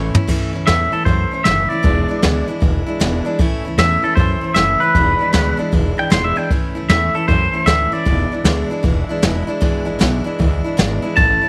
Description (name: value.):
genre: rockabilly.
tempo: 154 BPM.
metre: 4/4.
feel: swing 65% on 8ths.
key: A major.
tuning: A4 = 439 Hz.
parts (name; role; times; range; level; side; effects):
picked steel-string acoustic guitar; accompaniment; 0.0-11.5 s; E2 to E4; -23 LUFS; equal; none.
upright bass; bass; 0.0-11.5 s; E1 to F#2; -23 LUFS; equal; none.
jazz brush drum kit; drums; 0.1-11.3 s; crash cymbal, hi-hat, kick drum, snare drum, toms; -21 LUFS; equal; none.
twangy electric guitar; melody; 0.7-8.7, 11.2-11.5 s; A4 to C6; -20 LUFS; equal; spring reverb, tape echo.
room: studio ambience.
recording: none.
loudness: -17 LUFS.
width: mono.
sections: 0.3-11.5 A section.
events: drum fill 0.0.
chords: 0.3 A; 1.8 E7; 3.4 A; 5.0 E7; 6.5 A; 8.1 E7.